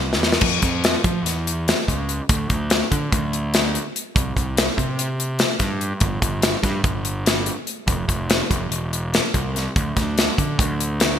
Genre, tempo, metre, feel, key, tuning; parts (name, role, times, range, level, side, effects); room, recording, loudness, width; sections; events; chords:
math rock and midwest emo; 289 BPM (eighths); 9/8; straight; C major; A4 = 440 Hz
fuzz picked electric bass; bass; 0.0-11.2 s; E1 to F3; -24 LUFS; equal; overdrive
modern studio drum kit; drums; 0.1-11.1 s; crash cymbal, hi-hat, kick drum, snare drum; -20 LUFS; left 1 dB; gated reverb
moderate lush hall reverb, RT60 1.7 s; bright 1980s-style digital production; -19 LUFS; side -9 dB against mid
0.4-11.2 A section
drum fill 0.0-0.4